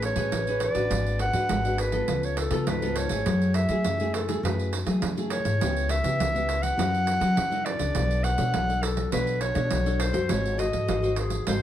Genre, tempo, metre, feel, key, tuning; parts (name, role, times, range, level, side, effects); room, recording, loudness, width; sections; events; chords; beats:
samba and choro; 102 BPM; 4/4; straight; A4 = 440 Hz
warm clarinet; melody; 0.0-11.6 s; G#4 to F#5; -28 LUFS; equal
nylon-string guitar; accompaniment; 0.0-11.6 s; G#2 to C#5; -30 LUFS; left 2 dB
upright bass; bass; 0.0-11.6 s; G#1 to F#3; -28 LUFS; left 1 dB
pandeiro; percussion; 0.0-11.6 s; -31 LUFS; right 6 dB
moderate studio reverb, RT60 0.8 s; -23 LUFS; side -11 dB against mid
0.0-11.6 A section
0.0 Amaj9; 0.9 G#m7b5; 2.1 C#7b13; 3.3 F#m9; 5.6 C#m7b5; 6.8 F#7; 8.0 Bm9; 10.3 G#7b9
0.33 | 0.91 1.50 2.09 2.67 | 3.26 3.85 4.43 5.02 | 5.61 6.19 6.78 7.37 | 7.95 8.54 9.12 9.71 | 10.30 10.88 11.47